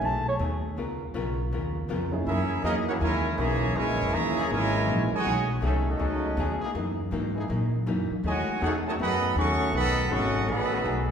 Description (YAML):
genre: jazz, big band swing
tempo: 161 BPM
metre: 4/4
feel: swing 64% on 8ths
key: unclear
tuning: A4 = 440 Hz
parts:
  - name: archtop guitar, miked and amplified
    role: accompaniment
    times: 0.0-11.1 s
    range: F#2 to A#4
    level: -31 LUFS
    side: left 2 dB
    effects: none
  - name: upright bass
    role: bass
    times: 0.0-11.1 s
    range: F#1 to A#2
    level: -29 LUFS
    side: equal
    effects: none
  - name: warm baby grand piano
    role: accompaniment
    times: 2.1-2.2 s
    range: F#2 to G#4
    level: -37 LUFS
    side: right 1 dB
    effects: none
  - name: warm trumpet section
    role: melody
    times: 2.3-11.1 s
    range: A3 to C#6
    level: -28 LUFS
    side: right 1 dB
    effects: none
  - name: clear trombone section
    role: second line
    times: 2.3-11.1 s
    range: A2 to F#4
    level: -31 LUFS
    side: right 2 dB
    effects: none
  - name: clear trombone section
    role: sustained chords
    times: 2.6-10.8 s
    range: D#3 to A4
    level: -37 LUFS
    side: left 1 dB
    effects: none
room: wet recital hall reverb, RT60 1.6 s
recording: recorded in a church or concert hall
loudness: -24 LUFS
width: side -7 dB against mid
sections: 0.0-2.3 A section; 2.3-11.1 B section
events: none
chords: 0.0 B6; 0.8 C#13; 2.3 F#13; 5.2 B13; 6.7 F#13; 8.2 B13